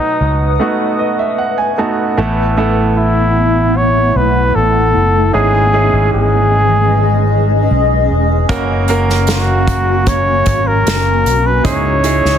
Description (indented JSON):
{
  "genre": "pop ballad",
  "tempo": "76 BPM",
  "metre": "4/4",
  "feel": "straight",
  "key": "unclear",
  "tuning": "A4 = 440 Hz",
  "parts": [
    { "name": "warm flugelhorn", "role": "melody", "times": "0.0-12.4 s", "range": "D#4 to C#5", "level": "-15 LUFS", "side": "left 1 dB", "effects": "none" },
    { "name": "clear baby grand piano", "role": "accompaniment", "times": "0.0-12.4 s", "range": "G#2 to A5", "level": "-18 LUFS", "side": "right 3 dB", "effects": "none" },
    { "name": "granular cloud pad", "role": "sustained chords", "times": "0.0-12.4 s", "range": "E3 to D#6", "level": "-18 LUFS", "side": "left 1 dB", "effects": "built-in reverb" },
    { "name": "fingered electric bass", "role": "bass", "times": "0.2-12.4 s", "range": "E1 to C#2", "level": "-15 LUFS", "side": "equal", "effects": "none" },
    { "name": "unplugged drum kit", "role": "drums", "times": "8.5-12.3 s", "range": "hi-hat, kick drum, snare drum", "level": "-19 LUFS", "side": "equal", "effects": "none" }
  ],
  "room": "light reverb, small room ambience",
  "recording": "dense, heavily limited modern master",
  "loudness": "-11 LUFS",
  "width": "side -8 dB against mid",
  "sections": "0.0-2.2 A section; 2.2-12.4 B section",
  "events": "grand piano fill 0.6-2.2",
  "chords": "0.0 B7; 2.2 Asus2; 5.3 C#madd9/G#; 8.5 F#; 11.7 C#madd9",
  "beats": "0.60 1.39 | 2.18 2.97 3.76 4.55 | 5.34 6.13 6.92 7.71 | 8.49 9.28 10.07 10.86 | 11.65"
}